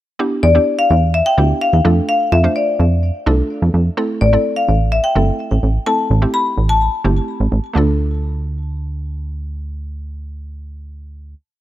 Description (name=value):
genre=dance-pop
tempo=127 BPM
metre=4/4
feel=straight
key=D dorian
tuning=A4 = 439 Hz
part: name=mallet-like synth pluck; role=accompaniment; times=0.2-11.4 s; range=A3 to C5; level=-22 LUFS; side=right 2 dB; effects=chorus
part: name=marimba with hard mallets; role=melody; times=0.4-7.4 s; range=D5 to B5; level=-17 LUFS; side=left 3 dB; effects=digital delay
part: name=plucky analog bass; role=bass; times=0.4-11.3 s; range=G1 to F2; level=-16 LUFS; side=right 1 dB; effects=none
room=small room ambience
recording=rough home demo mix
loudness=-13 LUFS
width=side -14 dB against mid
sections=0.2-7.8 verse; 7.8-11.5 final chord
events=none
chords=0.2 Em7; 1.8 Dm/F; 4.0 Am; 7.8 Dm